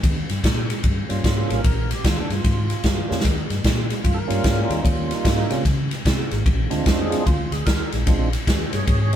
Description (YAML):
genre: electric blues shuffle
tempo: 149 BPM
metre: 4/4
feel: swing 64% on 8ths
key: unclear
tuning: A4 = 440 Hz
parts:
  - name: vintage muted fingered electric bass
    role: bass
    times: 0.0-9.1 s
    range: Ab1 to Db3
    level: -24 LUFS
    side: left 1 dB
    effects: none
  - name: swinging big-band drum kit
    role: drums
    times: 0.0-9.2 s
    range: kick drum, ride cymbal, snare drum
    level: -20 LUFS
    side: equal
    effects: none
  - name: tonewheel organ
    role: accompaniment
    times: 1.1-9.2 s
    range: G3 to Db5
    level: -26 LUFS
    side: right 3 dB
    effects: overdrive, chorus vibrato, slow rotary speaker
room: moderate small room reverb, RT60 0.5 s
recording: band playing live in one room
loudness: -18 LUFS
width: side -10 dB against mid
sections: 0.0-9.2 A section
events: drum fill 3.0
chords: 0.0 Eb7 (rootless); 1.6 Bb5; 3.2 Eb7; 6.5 Bb7